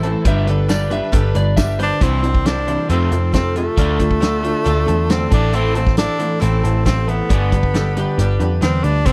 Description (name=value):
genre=folk rock and heartland rock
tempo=136 BPM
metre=4/4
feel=straight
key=unclear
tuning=A4 = 440 Hz
part: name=picked twelve-string acoustic guitar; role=accompaniment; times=0.0-9.1 s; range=A2 to C5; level=-27 LUFS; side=equal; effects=none
part: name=rich studio string section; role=sustained chords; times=0.0-2.0 s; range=G3 to C5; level=-35 LUFS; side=equal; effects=none
part: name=crunchy overdriven guitar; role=riff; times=0.0-9.1 s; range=F2 to D4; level=-25 LUFS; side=equal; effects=none
part: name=vintage muted picked electric bass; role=bass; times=0.0-9.1 s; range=G1 to F2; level=-21 LUFS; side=equal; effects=none
part: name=natural country drum kit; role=drums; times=0.0-9.1 s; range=hi-hat, kick drum, snare drum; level=-20 LUFS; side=equal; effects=none
part: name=electric slide guitar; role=second line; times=0.3-2.0, 7.8-8.5 s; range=G4 to E5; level=-27 LUFS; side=equal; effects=none
part: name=tambourine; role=percussion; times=0.7-1.7 s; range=none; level=-39 LUFS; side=equal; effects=none
part: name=breathy tenor saxophone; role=melody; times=1.8-9.1 s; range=A3 to D4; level=-24 LUFS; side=equal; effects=none
room=little or no reverb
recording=dry, close 1970s-style studio recording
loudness=-17 LUFS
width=mono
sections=0.0-2.0 A section; 2.0-9.1 B section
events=electric slide guitar solo 0.0-2.0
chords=0.3 G; 2.0 Cadd9; 2.9 F; 3.8 Dm; 5.3 Am; 7.3 G